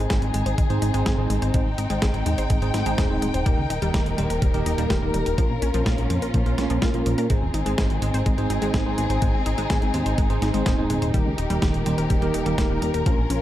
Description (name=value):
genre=italo disco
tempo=125 BPM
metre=4/4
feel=straight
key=Ab major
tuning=A4 = 440 Hz
part: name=warm studio string section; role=sustained chords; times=0.0-13.4 s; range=Eb3 to G5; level=-28 LUFS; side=left 2 dB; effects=none
part: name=wide unison pluck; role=arpeggios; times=0.0-13.4 s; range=F3 to C5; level=-31 LUFS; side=left 3 dB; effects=cassette tape, tape echo
part: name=bell-like tine electric piano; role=stabs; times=0.0-13.2 s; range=Ab2 to Eb5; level=-27 LUFS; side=right 2 dB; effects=phaser, low-pass filter, tape echo
part: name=chorused synth bass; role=bass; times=0.0-13.4 s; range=Eb1 to Bb2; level=-26 LUFS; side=equal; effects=none
part: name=clean 12-bit digital drum machine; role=drums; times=0.1-13.4 s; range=hi-hat, snare drum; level=-30 LUFS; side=equal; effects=none
part: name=electronic kick drum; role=drums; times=0.1-13.2 s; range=none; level=-23 LUFS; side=equal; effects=none
room=light reverb, digital ambience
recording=dark, warm production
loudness=-20 LUFS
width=side -13 dB against mid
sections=0.0-13.4 A section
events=none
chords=0.0 Ab; 3.5 Eb; 5.4 Bbm; 7.3 Ab; 11.1 Eb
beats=0.10 0.58 1.06 | 1.54 2.02 2.50 2.98 | 3.46 3.94 4.42 4.90 | 5.38 5.86 6.34 6.82 | 7.30 7.78 8.26 8.74 | 9.22 9.70 10.18 10.66 | 11.14 11.62 12.10 12.58 | 13.06